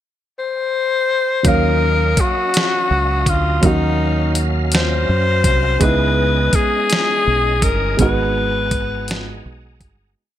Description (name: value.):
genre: slow six-eight R&B.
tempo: 55 BPM (dotted quarters).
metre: 6/8.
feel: straight.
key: unclear.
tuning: A4 = 440 Hz.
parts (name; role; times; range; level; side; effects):
breathy tenor saxophone; melody; 0.4-9.4 s; D#4 to B#4; -18 LUFS; left 3 dB; ping-pong delay.
dark baby grand piano; accompaniment; 1.4-10.2 s; F#3 to E#5; -22 LUFS; right 3 dB; none.
bright tonewheel organ; sustained chords; 1.4-10.2 s; C#4 to E#6; -28 LUFS; right 1 dB; chorus vibrato, fast rotary speaker.
dusty soul sampler-style drum kit; drums; 1.4-10.0 s; hi-hat, kick drum, snare drum; -19 LUFS; right 1 dB; gated reverb.
deep dub fingered electric bass; bass; 1.5-10.1 s; G1 to F#2; -19 LUFS; right 1 dB; none.
room: light reverb, digital ambience.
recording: bright 1980s-style digital production.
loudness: -14 LUFS.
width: side -11 dB against mid.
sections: 0.0-1.4 pickup bar; 1.4-10.2 chorus.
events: fade-out 8.0-10.2.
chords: 0.0 N.C.; 1.4 D#m9; 5.8 C#m9; 8.0 G#m9.